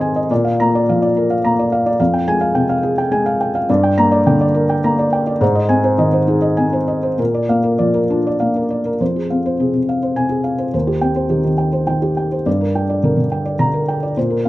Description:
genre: neoclassical minimalist piano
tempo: 105 BPM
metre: 3/4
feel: rubato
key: F dorian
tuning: A4 = 439 Hz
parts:
  - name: felt-muted upright piano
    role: solo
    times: 0.0-14.5 s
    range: Eb2 to C6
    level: -14 LUFS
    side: equal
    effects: none
room: moderate studio reverb, RT60 0.5 s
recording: rough home demo mix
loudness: -14 LUFS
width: side -16 dB against mid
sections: 0.0-9.0 A section; 9.0-14.5 B section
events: none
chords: 0.3 Bb; 2.0 Fmadd9; 3.7 Gm; 5.4 Ab; 7.2 Bb; 9.0 Fm; 10.7 Cm/Eb; 12.5 Gm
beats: | 0.30 0.87 1.44 | 1.99 2.55 3.12 | 3.69 4.26 4.83 | 5.41 6.00 6.59 | 7.19 7.80 8.40 | 9.01 9.60 10.17 | 10.74 11.31 11.89 | 12.46 13.03 13.60 | 14.16

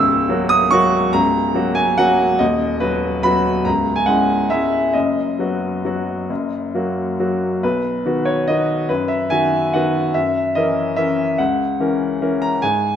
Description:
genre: classical, piano waltz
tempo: 130-151 BPM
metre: 3/4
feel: rubato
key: B major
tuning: A4 = 439 Hz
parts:
  - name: bright upright piano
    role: solo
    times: 0.0-13.0 s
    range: C#1 to E6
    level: -16 LUFS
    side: equal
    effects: none
room: moderate scoring stage reverb, RT60 1.5 s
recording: none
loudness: -16 LUFS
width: side -9 dB against mid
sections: 0.0-7.6 A section; 7.6-13.0 B section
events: none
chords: 0.0 F#7/C#; 2.4 B/D#; 3.7 C#m; 4.9 B/F#; 6.3 F#; 7.6 B; 10.2 F#7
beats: 0.30 0.72 | 1.14 1.55 1.98 | 2.40 2.81 3.24 | 3.66 4.07 4.50 | 4.94 5.39 5.85 | 6.30 6.74 7.20 | 7.63 8.05 8.48 | 8.89 9.30 9.74 | 10.16 10.56 10.98 | 11.39 11.80 12.22 | 12.63

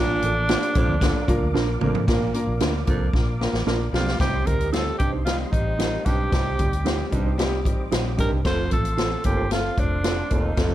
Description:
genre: uptempo 1960s-style soul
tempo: 113 BPM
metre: 4/4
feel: straight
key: C dorian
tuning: A4 = 440 Hz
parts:
  - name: breathy tenor saxophone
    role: melody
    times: 0.0-10.7 s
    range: D4 to C5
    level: -27 LUFS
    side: right 1 dB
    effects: none
  - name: vibraphone with hard mallets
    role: second line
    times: 0.0-1.8 s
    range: D4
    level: -38 LUFS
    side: left 4 dB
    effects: none
  - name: warm upright piano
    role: accompaniment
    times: 0.0-10.7 s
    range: F3 to C5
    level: -29 LUFS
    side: left 1 dB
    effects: none
  - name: tonewheel organ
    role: sustained chords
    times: 0.0-10.7 s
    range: G4 to D6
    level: -38 LUFS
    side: right 1 dB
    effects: slow rotary speaker, overdrive, chorus vibrato
  - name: breathy baritone saxophone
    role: riff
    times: 0.0-10.7 s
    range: Eb2 to C3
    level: -31 LUFS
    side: right 5 dB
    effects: none
  - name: vintage muted fingered electric bass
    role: bass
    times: 0.0-10.7 s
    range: E1 to D2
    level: -26 LUFS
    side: equal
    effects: none
  - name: swinging big-band drum kit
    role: drums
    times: 0.2-10.7 s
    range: hi-hat, kick drum, snare drum, toms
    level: -24 LUFS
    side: equal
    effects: none
  - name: mellow electric guitar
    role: stabs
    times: 0.5-10.2 s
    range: D4 to C5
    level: -30 LUFS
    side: right 8 dB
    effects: tape echo
room: light reverb, small room ambience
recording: none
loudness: -20 LUFS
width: side -13 dB against mid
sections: 0.0-2.1 A section; 2.1-4.2 B section; 4.2-10.7 C section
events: drum fill 1.6-2.1, 3.1-4.2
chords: 0.0 Bb; 4.2 Cm; 8.5 F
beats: 0.49 1.02 1.55 | 2.08 2.61 3.14 3.67 | 4.20 4.73 5.27 5.80 | 6.33 6.86 7.39 7.92 | 8.45 8.99 9.52 10.05 | 10.58

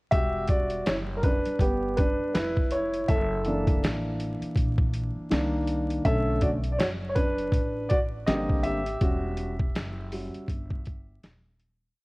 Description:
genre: hip hop, jazz-hop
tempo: 81 BPM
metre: 4/4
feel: swing 58% on 16ths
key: E dorian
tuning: A4 = 440 Hz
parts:
  - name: dark baby grand piano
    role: accompaniment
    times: 0.1-11.2 s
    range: D3 to E5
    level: -27 LUFS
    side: equal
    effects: none
  - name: upright bass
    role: bass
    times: 0.1-11.9 s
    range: D#1 to C2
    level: -33 LUFS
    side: equal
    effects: none
  - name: boom bap sampler-style drum kit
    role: drums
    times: 0.1-11.8 s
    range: hi-hat, kick drum, snare drum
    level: -27 LUFS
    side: equal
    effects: none
room: light reverb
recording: worn, warbling old tape, cassette tape, vinyl crackle, warbly pitch drift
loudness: -24 LUFS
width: side -23 dB against mid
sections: 0.1-12.0 A section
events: grand piano solo 0.1-12.0; fade-out 9.0-12.0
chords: 0.1 Emadd9; 3.1 F#7alt; 5.3 Cm9; 6.0 Bm9; 8.3 G#maj9#11; 9.0 Em69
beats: | 0.12 0.86 1.60 2.34 | 3.08 3.83 4.57 5.31 | 6.05 6.79 7.53 8.27 | 9.01 9.75 10.49 11.23

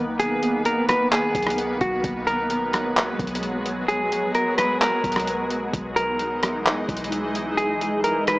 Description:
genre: hip hop, atmospheric cloud-rap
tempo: 130 BPM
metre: 4/4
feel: half-time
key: unclear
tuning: A4 = 441 Hz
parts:
  - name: shimmering ambient pad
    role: sustained chords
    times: 0.0-8.4 s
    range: D#3 to D#4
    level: -26 LUFS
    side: equal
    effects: chorus, built-in reverb, sidechain pumping
  - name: soft 808-style bass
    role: bass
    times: 0.0-8.4 s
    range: A#1 to B1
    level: -39 LUFS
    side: equal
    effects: none
  - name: semi-hollow electric guitar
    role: melody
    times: 0.2-8.4 s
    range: F#4 to B4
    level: -23 LUFS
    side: equal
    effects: digital delay
  - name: lo-fi sampler-style drum kit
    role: drums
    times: 0.2-8.4 s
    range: handclaps, hi-hat, kick drum, rim click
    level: -25 LUFS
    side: equal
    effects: none
room: moderate lush hall reverb, RT60 2.1 s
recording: small speaker sound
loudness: -20 LUFS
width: side -21 dB against mid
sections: 0.0-8.4 A section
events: none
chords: 0.0 Bmaj7; 2.0 G#m7/B; 5.7 Emaj7/B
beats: | 0.20 0.66 1.12 1.58 | 2.04 2.50 2.96 3.43 | 3.89 4.35 4.81 5.27 | 5.74 6.20 6.66 7.12 | 7.58 8.04

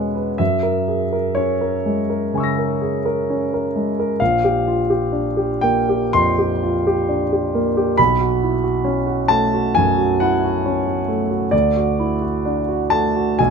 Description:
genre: classical, impressionist solo piano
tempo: 58-70 BPM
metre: 4/4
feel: rubato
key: unclear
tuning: A4 = 440 Hz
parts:
  - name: clear concert grand piano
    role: solo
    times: 0.0-13.5 s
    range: A#1 to A#6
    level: -16 LUFS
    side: equal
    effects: none
room: little or no reverb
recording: close, detailed microphones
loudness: -16 LUFS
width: side -5 dB against mid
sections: 0.0-13.5 A section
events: none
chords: 0.4 F#9; 4.2 A#69; 8.0 Bsus2; 11.5 Dadd9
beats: | 0.40 1.38 2.35 3.30 | 4.20 5.11 6.11 7.06 | 7.98 8.85 9.74 10.64 | 11.52 12.45 13.39

